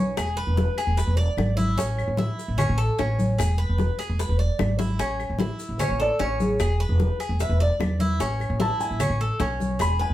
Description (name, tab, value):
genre	latin, Cuban son and guajira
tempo	150 BPM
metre	4/4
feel	straight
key	A major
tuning	A4 = 439 Hz
part	Cuban tres	arpeggios	0.0-10.1 s	C#4 to D5	-28 LUFS	equal	none
part	upright bass	bass	0.0-10.1 s	E1 to E2	-24 LUFS	equal	none
part	bongos	percussion	0.2-10.0 s	none	-33 LUFS	left 4 dB	none
part	claves	percussion	0.2-10.0 s	none	-39 LUFS	left 3 dB	none
part	congas	percussion	0.2-10.1 s	none	-29 LUFS	left 1 dB	none
part	maracas	percussion	0.2-10.1 s	none	-42 LUFS	left 2 dB	none
part	felt-muted upright piano	melody	5.8-10.1 s	G#4 to B5	-26 LUFS	equal	none
room	moderate studio reverb, RT60 0.6 s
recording	heard from further back in the room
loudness	-21 LUFS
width	side -14 dB against mid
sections	0.0-5.0 A section; 5.0-10.1 B section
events	drum fill 4.8; felt piano solo 5.0-10.1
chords	0.2 E7; 1.8 A; 3.4 E7; 5.0 A; 6.6 E7; 8.2 A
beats	| 0.18 0.58 0.98 1.38 | 1.78 2.19 2.59 2.99 | 3.39 3.79 4.19 4.59 | 4.99 5.39 5.80 6.20 | 6.60 7.00 7.40 7.80 | 8.20 8.61 9.01 9.41 | 9.81